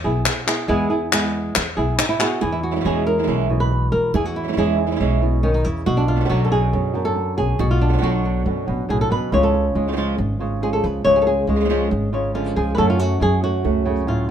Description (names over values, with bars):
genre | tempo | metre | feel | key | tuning
flamenco | 139 BPM | 4/4 | straight | unclear | A4 = 440 Hz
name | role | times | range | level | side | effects
flamenco guitar | melody | 0.0-14.3 s | F#2 to C#5 | -20 LUFS | equal | none
upright bass | bass | 0.0-14.3 s | G#1 to F#2 | -22 LUFS | equal | none
palmas hand claps | percussion | 0.3-2.4 s | none | -21 LUFS | left 4 dB | none
flamenco guitar | stabs | 2.4-14.3 s | B2 to F#4 | -24 LUFS | right 6 dB | none
room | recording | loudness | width
moderate studio reverb, RT60 0.8 s | minimal, uncompressed stereo recording | -17 LUFS | side -9 dB against mid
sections
0.0-2.4 A section; 2.4-14.3 B section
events
none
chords
0.0 E; 2.4 E6; 5.9 Bmadd9; 9.3 C#; 12.8 F#m